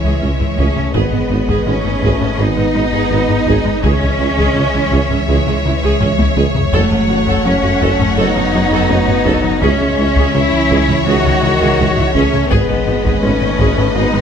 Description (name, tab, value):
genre	cinematic, hybrid orchestral and electronic film score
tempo	83 BPM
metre	4/4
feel	straight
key	C# minor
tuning	A4 = 441 Hz
part	warm symphonic violin section	melody	0.0-14.2 s	D#5 to F#5	-26 LUFS	left 1 dB	none
part	warm symphonic violin section	second line	0.0-14.2 s	B4 to C#5	-22 LUFS	left 2 dB	none
part	rich studio viola section	accompaniment	0.0-14.2 s	B3 to A4	-23 LUFS	right 1 dB	none
part	ethereal airy pad	sustained chords	0.0-14.2 s	C#3 to C#5	-25 LUFS	equal	none
part	mellow French horn section	sustained chords	0.0-14.2 s	D#3 to C#4	-22 LUFS	left 4 dB	none
part	harp-like synth pluck	arpeggios	0.0-14.2 s	C#3 to G#4	-27 LUFS	equal	none
part	rubbery square bass	riff	0.0-14.2 s	C#2 to G#3	-21 LUFS	left 3 dB	none
part	rich chamber double bass section	bass	0.0-14.2 s	G#1 to F#2	-22 LUFS	right 4 dB	none
part	rich symphonic cello section	bass	0.0-14.2 s	G#3 to F#4	-18 LUFS	right 1 dB	none
part	sub bass with octave	bass	0.0-14.2 s	F#1 to C#2	-23 LUFS	equal	none
part	warm tuba	bass	0.2-14.0 s	F#1 to C#2	-22 LUFS	right 5 dB	none
part	taiko ensemble	drums	0.4-14.2 s	none	-21 LUFS	equal	none
part	riser	sound effects	13.3-14.2 s	none	-30 LUFS	right 1 dB	none
room	moderate scoring stage reverb, RT60 1.6 s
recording	none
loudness	-12 LUFS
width	side -7 dB against mid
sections	0.0-14.2 A section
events	drum fill 6.0-6.7; riser 13.3-14.2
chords	0.0 C#m; 1.0 G#m; 3.8 C#m; 6.7 F#m; 9.6 C#m; 12.5 G#m